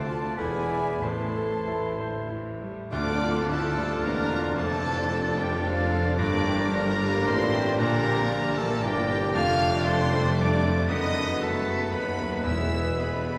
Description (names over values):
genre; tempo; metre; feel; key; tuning
classical, romantic movement for piano and orchestra; 90-119 BPM; 3/4; rubato; D minor; A4 = 440 Hz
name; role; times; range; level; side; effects
bright concert grand piano; melody; 0.0-13.4 s; D2 to D5; -32 LUFS; equal; none
warm symphonic violin section; melody; 0.0-13.4 s; C5 to F6; -39 LUFS; equal; none
clear clarinet; second line; 0.0-13.4 s; B3 to F4; -40 LUFS; equal; none
mellow hollow silver concert flute; second line; 0.0-13.4 s; G#5 to B6; -37 LUFS; equal; none
warm oboe; second line; 0.0-13.4 s; D5 to C6; -42 LUFS; equal; none
warm symphonic violin section; second line; 0.0-13.4 s; A3 to A5; -44 LUFS; equal; none
mellow bassoon; accompaniment; 0.0-13.4 s; D3 to A3; -39 LUFS; equal; none
rich symphonic viola section; accompaniment; 0.0-13.4 s; D3 to F4; -38 LUFS; equal; none
warm trombone section; sustained chords; 0.0-13.4 s; B2 to D4; -41 LUFS; equal; none
clear trumpet section; stabs; 0.0-13.4 s; F4 to F5; -36 LUFS; equal; none
rich symphonic double bass section; bass; 0.0-13.4 s; E1 to D#2; -37 LUFS; equal; none
warm studio cello section; bass; 0.0-13.4 s; D2 to Bb2; -36 LUFS; equal; none
warm tuba; bass; 0.0-13.4 s; E1 to D#2; -39 LUFS; equal; none
mellow French horn section; sustained chords; 0.1-13.4 s; F3 to A4; -37 LUFS; equal; none
timpani; percussion; 1.0-2.0, 12.4-13.2 s; E2 to A2; -39 LUFS; equal; none
tam-tam; percussion; 2.9-5.1 s; none; -44 LUFS; equal; none
room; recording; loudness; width
wet recital hall reverb, RT60 1.8 s; recorded in a church or concert hall; -26 LUFS; mono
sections
0.0-2.9 A section; 2.9-13.4 B section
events
band accent 2.9-3.5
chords
0.4 E7; 1.0 Am; 2.9 Dm; 4.6 Dm/F; 6.2 Gm; 7.8 Gm/Bb; 9.4 Dm/F; 10.9 B7/F#; 12.5 E